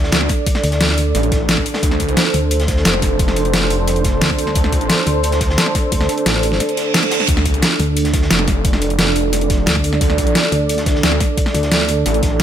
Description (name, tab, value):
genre	dark technical drum and bass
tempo	176 BPM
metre	4/4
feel	straight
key	D minor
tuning	A4 = 440 Hz
part	dark analog pad	sustained chords	0.0-12.4 s	D4 to D5	-20 LUFS	right 2 dB	chorus, sidechain pumping
part	pulsing pluck wobble bass	bass	0.0-12.0 s	A1 to D2	-18 LUFS	equal	chorus
part	crunchy breakbeat drum kit	drums	0.0-12.4 s	hi-hat, snare drum	-28 LUFS	equal	high-pass filter on hats, studio reverb, high-pass filter on snare, high-pass filter on room
part	wide detuned saw bass	bass	0.1-4.9, 7.3-12.4 s	F1 to D2	-19 LUFS	equal	chorus, overdrive, sidechain pumping
part	dubstep drum kit	drums	0.1-12.4 s	hi-hat, snare drum	-18 LUFS	equal	overdrive, studio reverb
part	electronic kick drum	drums	0.3-12.3 s	none	-19 LUFS	equal	overdrive, studio reverb
part	reverse cymbal	sound effects	6.7-7.3 s	none	-22 LUFS	right 4 dB	none
room	light reverb, digital ambience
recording	none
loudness	-13 LUFS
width	side -10 dB against mid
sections	0.0-12.4 A section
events	reverse cymbal 6.7-7.3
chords	0.0 D5